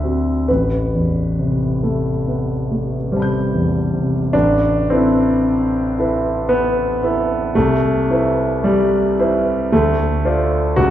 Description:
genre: classical, impressionist solo piano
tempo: 43-58 BPM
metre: 3/4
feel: rubato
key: A minor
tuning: A4 = 440 Hz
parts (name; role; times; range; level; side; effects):
- clear concert grand piano; solo; 0.0-10.9 s; A1 to G6; -15 LUFS; equal; none
room: wet recital hall reverb, RT60 1.4 s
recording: heard from further back in the room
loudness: -15 LUFS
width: side -11 dB against mid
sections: 0.0-4.3 A section; 4.3-10.9 B section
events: none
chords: 0.5 Am9; 4.3 Amadd9; 7.5 Cmaj7; 9.7 Dm7

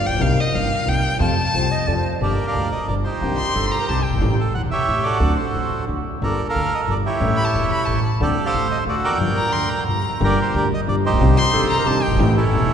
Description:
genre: tango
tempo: 181 BPM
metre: 3/4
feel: rubato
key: G minor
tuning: A4 = 440 Hz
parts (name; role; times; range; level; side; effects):
- warm violin; second line; 0.0-4.3, 7.4-12.3 s; Eb5 to C6; -25 LUFS; left 2 dB; none
- dark concert grand piano; accompaniment; 0.0-12.7 s; E1 to A4; -22 LUFS; left 2 dB; none
- upright bass; bass; 0.1-12.7 s; E1 to F2; -24 LUFS; right 1 dB; none
- mellow clarinet; second line; 1.5-4.3, 11.4-12.3 s; F4 to Eb5; -30 LUFS; right 4 dB; none
- bandoneon; melody; 2.2-12.7 s; C#4 to G5; -22 LUFS; right 2 dB; none
room: wet cathedral reverb, RT60 5.0 s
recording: recorded in a church or concert hall, nothing above 10.4 kHz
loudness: -17 LUFS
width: side -8 dB against mid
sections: 0.0-2.2 A section; 2.2-10.2 B section; 10.2-12.7 C section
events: violin solo 0.0-2.2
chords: 0.2 Cm7; 1.2 F; 2.2 Gm; 3.2 Cmadd9; 4.2 A7; 5.2 D7; 6.2 Gmadd9; 7.2 A7; 8.2 D7sus4; 8.9 D; 9.2 Gm7; 10.2 Gm; 11.2 Cmadd9; 12.2 A7

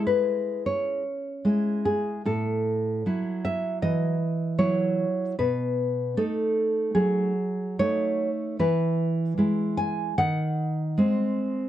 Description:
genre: romantic piece for solo classical guitar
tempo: 76 BPM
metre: 4/4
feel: rubato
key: unclear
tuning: A4 = 441 Hz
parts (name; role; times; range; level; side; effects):
- nylon-string guitar; solo; 0.0-11.7 s; A2 to G#5; -23 LUFS; equal; none
room: light reverb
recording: dark, warm production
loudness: -23 LUFS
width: side -12 dB against mid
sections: 0.0-11.7 A section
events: none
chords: 0.0 C#m; 2.3 F#m7/A; 5.4 B7; 8.6 E; 10.2 G#7/D#

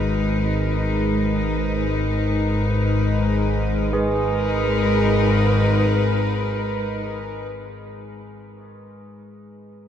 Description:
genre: dark ambient drone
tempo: free time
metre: none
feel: none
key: unclear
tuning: A4 = 440 Hz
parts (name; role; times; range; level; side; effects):
- rich studio cello section; sustained chords; 0.0-7.5 s; G#3 to B4; -24 LUFS; equal; none
- analog drone; drone; 0.0-6.9 s; G#1 to G#2; -22 LUFS; left 1 dB; chorus
- carillon bells; arpeggios; 3.9-7.0 s; G#4; -29 LUFS; right 2 dB; diffuse ambient delay
room: wet cathedral reverb, RT60 5.8 s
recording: cassette tape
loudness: -18 LUFS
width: side -9 dB against mid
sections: 0.0-3.9 A section; 3.9-8.1 B section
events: none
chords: 0.0 G#madd9

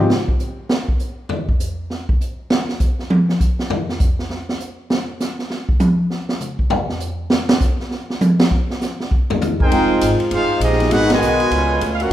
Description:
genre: jazz, big band swing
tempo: 200 BPM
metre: 4/4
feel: swing 62% on 8ths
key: F minor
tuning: A4 = 440 Hz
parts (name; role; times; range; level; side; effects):
- dark baby grand piano; accompaniment; 0.0-0.1, 9.7-11.5 s; Ab3 to G5; -21 LUFS; left 1 dB; none
- mellow saxophone section; sustained chords; 0.0-0.1, 9.7-12.1 s; D3 to Gb4; -25 LUFS; equal; none
- upright bass; bass; 0.0-0.1, 9.7-12.1 s; F1 to D2; -22 LUFS; equal; none
- swinging big-band drum kit; drums; 0.1-12.1 s; hi-hat, kick drum, ride cymbal, snare drum, toms; -18 LUFS; equal; none
- clear trumpet section; melody; 9.6-12.1 s; C4 to Ab5; -19 LUFS; equal; none
- bright trombone section; second line; 9.6-12.1 s; Cb3 to Bb4; -20 LUFS; right 1 dB; none
room: moderate recital hall reverb, RT60 1.3 s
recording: recorded in a church or concert hall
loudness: -16 LUFS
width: side -12 dB against mid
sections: 0.1-9.7 A section; 9.7-12.1 B section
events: drum solo 0.1-9.7; band accent 11.1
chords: 0.1 N.C.; 9.1 Cm; 9.7 Fm9; 10.9 Abm7; 11.5 Db7b9

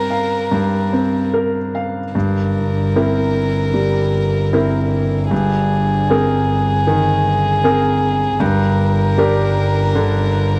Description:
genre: neoclassical piano and strings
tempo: 76 BPM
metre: 4/4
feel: rubato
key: unclear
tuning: A4 = 440 Hz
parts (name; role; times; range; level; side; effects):
- dark violin; melody; 0.0-10.6 s; Ab4 to Bb4; -23 LUFS; equal; none
- clear grand piano; accompaniment; 0.0-10.6 s; G2 to F5; -20 LUFS; equal; none
- warm double bass; bass; 2.1-10.6 s; G1; -21 LUFS; equal; transformer saturation
room: light reverb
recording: none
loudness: -17 LUFS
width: mono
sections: 0.0-2.1 A section; 2.1-10.6 B section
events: none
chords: 0.0 Bbsus2/G; 2.1 C7/G; 5.3 Abadd9/G; 8.4 Gm

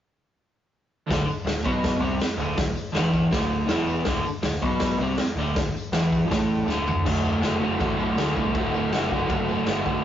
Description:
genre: garage rock duo or trio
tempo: 161 BPM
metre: 4/4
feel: straight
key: D mixolydian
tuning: A4 = 440 Hz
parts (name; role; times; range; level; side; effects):
- crunchy overdriven guitar; riff; 1.1-10.0 s; D2 to F#4; -24 LUFS; equal; none
- growling picked electric bass; bass; 1.1-10.0 s; D1 to D2; -30 LUFS; equal; overdrive
- vintage drum kit; drums; 1.1-9.9 s; crash cymbal, hi-hat, kick drum, snare drum, toms; -27 LUFS; equal; none
- tambourine; percussion; 1.1-10.0 s; none; -47 LUFS; left 4 dB; none
room: moderate stone room reverb, RT60 1.0 s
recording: rough rehearsal-room recording, warm saturation, nothing above 7.5 kHz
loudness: -22 LUFS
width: side -10 dB against mid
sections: 1.1-7.1 A section; 7.1-10.0 B section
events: drum fill 6.7-7.1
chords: 1.1 D5; 7.1 D

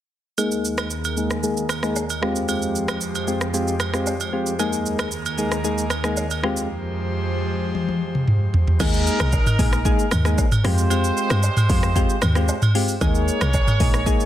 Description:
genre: afrobeats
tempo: 114 BPM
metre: 4/4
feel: straight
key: unclear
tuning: A4 = 443 Hz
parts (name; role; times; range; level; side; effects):
- soft electric-piano-like synth keys; accompaniment; 0.4-14.3 s; Ab3 to Ab4; -24 LUFS; left 1 dB; chorus, tremolo, low-pass filter
- airy breathy pad; sustained chords; 0.6-8.8 s; Eb2 to C5; -27 LUFS; right 1 dB; chorus, sidechain pumping, low-pass filter
- afro-pop drum kit; drums; 0.4-14.3 s; crash cymbal, hi-hat, kick drum, rim click, shaker, toms; -22 LUFS; equal; soft clipping on snare
- agogo bells and woodblock; percussion; 0.4-13.8 s; none; -30 LUFS; right 5 dB; none
- clear horn section; second line; 8.8-14.3 s; Ab3 to Db5; -27 LUFS; right 3 dB; digital delay
- woody log drum bass; bass; 8.8-14.2 s; Bb1 to G2; -21 LUFS; equal; none
room: little or no reverb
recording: dense, heavily limited modern master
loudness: -19 LUFS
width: side -12 dB against mid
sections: 0.4-8.8 A section; 8.8-14.3 B section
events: filter sweep 0.4-8.8; drums muted 6.7-8.8; drum fill 7.8-8.8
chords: 0.4 Ebsus4; 2.2 Fmadd9; 4.6 Ebsus4; 6.4 Fmadd9; 8.8 Ebsus4; 10.6 Fmadd9; 13.0 Ebsus4

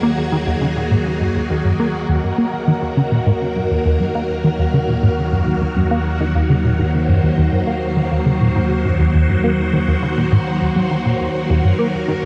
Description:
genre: ambient, sequencer-driven space music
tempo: 102 BPM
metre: 4/4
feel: straight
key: Eb dorian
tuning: A4 = 442 Hz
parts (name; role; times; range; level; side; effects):
- phased string machine; sustained chords; 0.0-12.3 s; Eb3 to C5; -22 LUFS; equal; ensemble chorus, phaser
- tight sequenced synth; riff; 0.0-12.1 s; Eb2 to Bb3; -20 LUFS; equal; chorus, analog delay
- fat analog bass; bass; 0.0-12.3 s; Eb2; -27 LUFS; equal; none
room: moderate huge ambient reverb, RT60 8.6 s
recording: cassette tape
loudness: -17 LUFS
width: mono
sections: 0.0-12.3 A section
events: none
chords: 0.0 Ebm

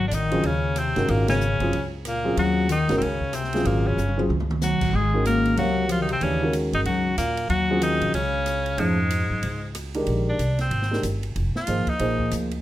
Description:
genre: modal jazz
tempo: 187 BPM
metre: 4/4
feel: swing 61% on 8ths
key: Ab mixolydian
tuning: A4 = 440 Hz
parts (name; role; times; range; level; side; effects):
- bright tenor saxophone; melody; 0.0-12.3 s; G#3 to Bb4; -26 LUFS; right 1 dB; none
- warm bass clarinet; second line; 0.0-9.8 s; G#2 to Bb3; -27 LUFS; left 5 dB; none
- upright bass; bass; 0.0-12.6 s; F1 to Gb2; -26 LUFS; equal; none
- open jazz drum kit; drums; 0.1-12.6 s; crash cymbal, hi-hat, kick drum, ride cymbal, rim click, snare drum, toms; -33 LUFS; right 2 dB; none
- warm grand piano; accompaniment; 0.3-12.5 s; C3 to F5; -26 LUFS; right 1 dB; none
room: moderate large studio reverb, RT60 1.1 s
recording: none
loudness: -21 LUFS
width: side -14 dB against mid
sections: 0.0-10.1 A section; 10.1-12.6 B section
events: band accent 1.2; drum fill 4.0-4.6; tenor saxophone solo 10.1-12.6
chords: 0.0 Ab9sus4; 8.8 F7alt; 10.1 Bb9sus4

